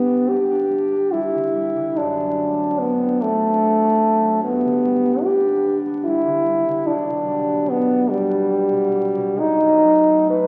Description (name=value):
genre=classical, romantic duo for French horn and harp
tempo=73 BPM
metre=3/4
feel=rubato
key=G major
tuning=A4 = 441 Hz
part: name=clear French horn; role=melody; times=0.0-10.5 s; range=G3 to B4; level=-19 LUFS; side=equal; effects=none
part: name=concert harp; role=accompaniment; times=0.0-10.5 s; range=B1 to B4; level=-28 LUFS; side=equal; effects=none
room=wet scoring stage reverb, RT60 2.1 s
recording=very old 78 rpm record, vinyl crackle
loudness=-19 LUFS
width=mono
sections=0.0-10.5 A section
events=none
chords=0.0 G; 2.0 D7/F#; 4.4 G; 6.9 G/B; 9.4 B7